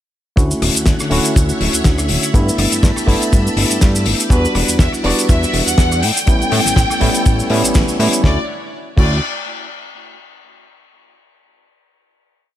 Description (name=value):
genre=nu-disco, nu disco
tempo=122 BPM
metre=4/4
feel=swing 54% on 16ths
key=D major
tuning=A4 = 440 Hz
part: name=tine electric piano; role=accompaniment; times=0.4-9.2 s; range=G3 to F#4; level=-20 LUFS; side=equal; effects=sidechain pumping, tape echo
part: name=string machine, full ensemble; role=sustained chords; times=0.5-8.5 s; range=D3 to B5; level=-25 LUFS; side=equal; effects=ensemble chorus, sidechain pumping
part: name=fat analog bass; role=bass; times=0.4-9.2 s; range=D1 to A2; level=-18 LUFS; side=equal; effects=none
part: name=damped 70s drum kit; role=drums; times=0.4-9.1 s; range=cabasa, crash cymbal, hi-hat, rim click, snare drum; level=-19 LUFS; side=left 2 dB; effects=studio ambience
part: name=kick drum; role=drums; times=0.4-9.1 s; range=none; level=-14 LUFS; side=equal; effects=studio ambience
part: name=warm symphonic violin section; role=melody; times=4.3-9.2 s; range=B4 to G5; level=-21 LUFS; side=equal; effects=vintage 12-bit sampler grit, digital delay
room=small room ambience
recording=none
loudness=-12 LUFS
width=side -12 dB against mid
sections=0.4-8.2 drop; 8.2-10.2 final chord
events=drop 0.4-8.2; band accent 7.7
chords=0.4 Dmaj9; 2.3 G69; 4.3 Em9; 6.0 A7; 8.2 Dmaj9